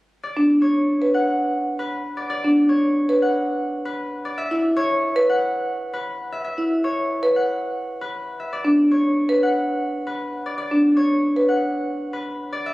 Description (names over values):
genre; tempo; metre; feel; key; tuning
classical, minimalist pattern music; 116 BPM; 4/4; straight; unclear; A4 = 438 Hz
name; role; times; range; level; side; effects
concert harp; melody; 0.2-12.7 s; B4 to F#5; -25 LUFS; left 1 dB; none
marimba with medium mallets; arpeggios; 0.4-11.5 s; D4 to B4; -20 LUFS; equal; none
room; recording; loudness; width
moderate recital hall reverb, RT60 1.5 s; recorded on a phone in the room, studio reverb; -19 LUFS; side -18 dB against mid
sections
0.2-12.7 A section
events
none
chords
0.2 Bmadd9/D; 4.4 F#5; 8.5 Bm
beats
| 0.24 0.76 1.28 1.79 | 2.31 2.83 3.35 3.86 | 4.38 4.90 5.42 5.93 | 6.45 6.97 7.48 8.00 | 8.52 9.04 9.55 10.07 | 10.59 11.10 11.62 12.14 | 12.66